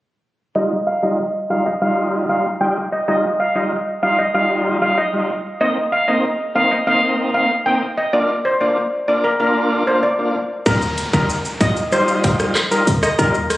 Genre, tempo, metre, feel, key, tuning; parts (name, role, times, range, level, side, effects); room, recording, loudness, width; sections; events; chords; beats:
dancehall; 95 BPM; 4/4; straight; Eb major; A4 = 440 Hz
steel pan; melody; 0.6-13.4 s; Bb4 to G5; -18 LUFS; equal; low-pass filter, digital delay
tonewheel organ; accompaniment; 0.6-13.4 s; G3 to F4; -21 LUFS; equal; overdrive, slow rotary speaker, low-pass filter
short 808-style bass; bass; 10.7-13.6 s; D2 to Eb2; -20 LUFS; equal
island pop drum kit; drums; 10.7-13.6 s; handclaps, hi-hat, kick drum, rim click, shaker; -20 LUFS; equal; overdrive, vintage 12-bit sampler grit
downlifter; sound effects; 10.7-13.6 s; -29 LUFS; equal
light reverb, digital ambience; recorded on a phone in the room, studio reverb; -15 LUFS; side -16 dB against mid
0.6-10.7 A section; 10.7-13.6 B section
filter sweep 0.6-10.7
0.6 Ebadd9; 5.6 Cm7; 8.1 Bb; 10.7 Ebadd9
| 0.56 1.19 1.82 2.45 | 3.08 3.71 4.34 4.98 | 5.61 6.24 6.87 7.50 | 8.13 8.77 9.40 10.03 | 10.66 11.29 11.92 12.55 | 13.19